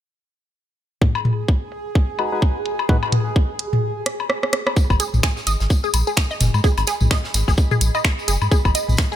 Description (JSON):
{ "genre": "minimal techno", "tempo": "128 BPM", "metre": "4/4", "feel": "swing 58% on 16ths", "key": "G# minor", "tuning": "A4 = 440 Hz", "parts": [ { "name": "electronic kick drum", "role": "drums", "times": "1.0-9.1 s", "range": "none", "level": "-17 LUFS", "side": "equal", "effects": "overdrive, studio reverb" }, { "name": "electronic toms and woodblock", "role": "percussion", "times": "1.0-9.0 s", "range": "none", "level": "-23 LUFS", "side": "left 3 dB", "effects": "studio reverb" }, { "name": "bubbling stepped-filter texture", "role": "texture", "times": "1.2-4.8 s", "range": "G#4", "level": "-30 LUFS", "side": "right 4 dB", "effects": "chorus, built-in reverb, sidechain pumping" }, { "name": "garage drum kit", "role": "drums", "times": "1.2-9.1 s", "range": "finger snaps, hi-hat, rim click", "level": "-22 LUFS", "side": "right 2 dB", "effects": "overdrive, low-pass filter on hats, studio reverb, low-pass filter on snare" }, { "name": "percussive organ stab", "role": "stabs", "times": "2.2-3.0 s", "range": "G#3 to B4", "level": "-27 LUFS", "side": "left 2 dB", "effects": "chorus, tape echo" }, { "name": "tight metal drum kit", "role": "drums", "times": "4.8-9.2 s", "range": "hi-hat, snare drum, tambourine", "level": "-34 LUFS", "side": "right 1 dB", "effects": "none" }, { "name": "tambourine", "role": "percussion", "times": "4.8-9.2 s", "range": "none", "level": "-31 LUFS", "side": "left 4 dB", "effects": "none" }, { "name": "granular cloud pad", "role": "texture", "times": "6.6-9.2 s", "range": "G#4 to B5", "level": "-36 LUFS", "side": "right 2 dB", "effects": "built-in reverb, sidechain pumping" }, { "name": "round analog bass", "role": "bass", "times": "4.9-8.9 s", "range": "F#1 to G#2", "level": "-20 LUFS", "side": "equal", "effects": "sidechain pumping" }, { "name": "resonant blip pluck", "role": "riff", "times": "5.0-9.2 s", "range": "G#4 to D#5", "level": "-25 LUFS", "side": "right 1 dB", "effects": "phaser, sidechain pumping, dub echo" } ], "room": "little or no reverb", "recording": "none", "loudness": "-17 LUFS", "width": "side -11 dB against mid", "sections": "1.0-4.8 A section; 4.8-9.2 B section", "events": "break 3.8-4.8; drum fill 4.1-4.8; fade-in on ambient pad 4.8-9.2", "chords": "1.0 G#m7; 4.8 G#m", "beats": "| 1.01 1.48 1.95 2.42 | 2.89 3.36 3.83 4.30 | 4.76 5.23 5.70 6.17 | 6.64 7.11 7.58 8.05 | 8.52 8.98" }